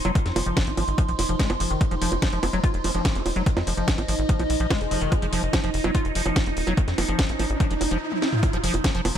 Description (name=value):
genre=psychedelic trance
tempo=145 BPM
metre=4/4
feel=straight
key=F phrygian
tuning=A4 = 440 Hz
part: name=evolving wavetable pad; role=sustained chords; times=0.0-9.2 s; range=F3 to F4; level=-31 LUFS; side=right 5 dB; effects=phaser, built-in reverb, sidechain pumping
part: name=warbly tape-like pad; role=texture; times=0.0-9.2 s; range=F4 to C6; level=-33 LUFS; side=equal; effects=chorus, built-in reverb, sidechain pumping
part: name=liquid acid bass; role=riff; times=0.1-9.2 s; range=Eb3 to F4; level=-30 LUFS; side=left 1 dB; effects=chorus, auto-pan, sidechain pumping, dub echo
part: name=tight sequencer bass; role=bass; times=0.1-9.2 s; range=Eb1 to F2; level=-27 LUFS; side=equal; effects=none
part: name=techno drum kit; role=drums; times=0.1-9.2 s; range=bongos, hi-hat, snare drum, toms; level=-28 LUFS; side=right 1 dB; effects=none
part: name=electronic kick drum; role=drums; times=0.2-8.9 s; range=none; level=-23 LUFS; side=equal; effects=none
part: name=vowel-sweep wobble bass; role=second line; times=2.8-5.4 s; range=Ab3 to C4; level=-38 LUFS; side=equal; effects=ensemble chorus, sidechain pumping, high-pass filter, tape echo
part: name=riser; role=sound effects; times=6.6-8.4 s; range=none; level=-32 LUFS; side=left 1 dB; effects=none
room=digital ambience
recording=none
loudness=-21 LUFS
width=side -9 dB against mid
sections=0.0-8.4 A section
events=riser 6.6-8.4; drum fill 8.1-8.4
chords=0.0 F5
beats=| 0.15 0.57 0.98 1.40 | 1.81 2.22 2.64 3.05 | 3.46 3.88 4.29 4.71 | 5.12 5.53 5.95 6.36 | 6.77 7.19 7.60 8.02 | 8.43 8.84